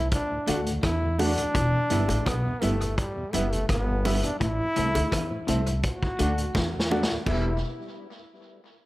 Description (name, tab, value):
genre	roots reggae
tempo	84 BPM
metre	4/4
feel	straight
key	E minor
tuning	A4 = 439 Hz
part	bright trombone	melody	0.0-7.6 s	G3 to F#4	-30 LUFS	equal	tape echo
part	tonewheel organ	accompaniment	0.0-7.5 s	D2 to F#4	-38 LUFS	left 1 dB	none
part	upright bass	bass	0.0-7.6 s	E1 to E2	-28 LUFS	equal	none
part	vintage drum kit	drums	0.1-7.4 s	crash cymbal, hi-hat, kick drum, rim click, snare drum	-30 LUFS	equal	tape echo
part	mellow electric guitar	accompaniment	0.5-7.5 s	G3 to G4	-34 LUFS	right 4 dB	tape echo
part	semi-hollow electric guitar	riff	0.5-6.8 s	E2 to E3	-36 LUFS	left 4 dB	none
part	dark upright piano	stabs	0.5-7.5 s	E4 to F#5	-34 LUFS	left 2 dB	none
part	bongos	percussion	0.5-7.6 s	none	-36 LUFS	right 2 dB	none
room	light reverb, small room reverb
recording	none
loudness	-23 LUFS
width	side -17 dB against mid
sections	0.0-7.3 A section; 7.3-8.9 B section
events	drum fill 6.5-7.3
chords	0.1 D; 1.6 Em; 4.4 Am; 5.8 D; 7.3 Em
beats	0.12 0.84 | 1.55 2.27 2.98 3.69 | 4.41 5.12 5.84 6.55 | 7.26